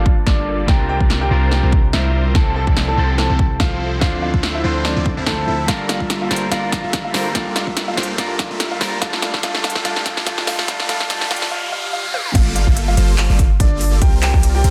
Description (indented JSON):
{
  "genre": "future bass",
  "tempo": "144 BPM",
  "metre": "4/4",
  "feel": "swing 55% on 16ths, half-time",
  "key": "unclear",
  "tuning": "A4 = 442 Hz",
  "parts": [
    { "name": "warm baby grand piano", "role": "melody", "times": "0.0-14.7 s", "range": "A3 to A5", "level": "-28 LUFS", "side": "equal", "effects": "sidechain pumping, tape echo" },
    { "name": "clean electric guitar", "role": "accompaniment", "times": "0.0-11.5 s", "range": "C3 to C5", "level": "-27 LUFS", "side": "equal", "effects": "sidechain pumping, dub echo" },
    { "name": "supersaw chords", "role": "riff", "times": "0.0-14.7 s", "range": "F3 to E5", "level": "-28 LUFS", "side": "equal", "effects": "sidechain pumping, low-pass filter" },
    { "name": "warm 808-style bass", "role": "bass", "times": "0.0-14.7 s", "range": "G1 to D2", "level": "-22 LUFS", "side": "equal", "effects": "sidechain pumping" },
    { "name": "electronic kick drum", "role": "drums", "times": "0.1-14.4 s", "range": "none", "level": "-19 LUFS", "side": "equal", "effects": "none" },
    { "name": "big-room dance drum kit", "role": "drums", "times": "0.3-14.7 s", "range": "crash cymbal, handclaps, hi-hat, snare drum, toms", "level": "-24 LUFS", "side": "equal", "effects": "overdrive, high-pass filter on snare, high-pass filter on toms, high-pass filter on hats, high-pass filter on cymbals, high-pass filter on room" },
    { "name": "riser and swell", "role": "sound effects", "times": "8.5-12.3 s", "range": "none", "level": "-32 LUFS", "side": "equal", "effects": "none" }
  ],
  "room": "light reverb",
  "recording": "dense, heavily limited modern master, high-pass filter",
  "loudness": "-18 LUFS",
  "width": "mono",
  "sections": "0.0-12.3 A section; 12.3-14.7 B section",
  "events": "build-up 0.0-12.3; drum fill 0.0-11.5, 12.1; filter sweep on supersaw synth 0.0-12.3; filter sweep 0.0-12.3; swell 11.5-12.3; drop 12.3-14.7",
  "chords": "0.0 Gm9; 0.7 C7sus4; 2.4 Fmaj7/C; 4.0 Dm9; 5.7 Gm9; 7.3 C7sus4; 9.0 Fmaj7/C; 10.7 Dm; 12.3 Gm9; 14.0 C7sus4",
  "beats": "0.27 | 0.68 1.10 1.52 1.93 | 2.35 2.77 3.18 3.60 | 4.02 4.43 4.85 5.27 | 5.68 6.10 6.52 6.93 | 7.35 7.77 8.18 8.60 | 9.02 9.43 9.85 10.27 | 10.68 11.10 11.52 11.93 | 12.35 12.77 13.18 13.60 | 14.02 14.43"
}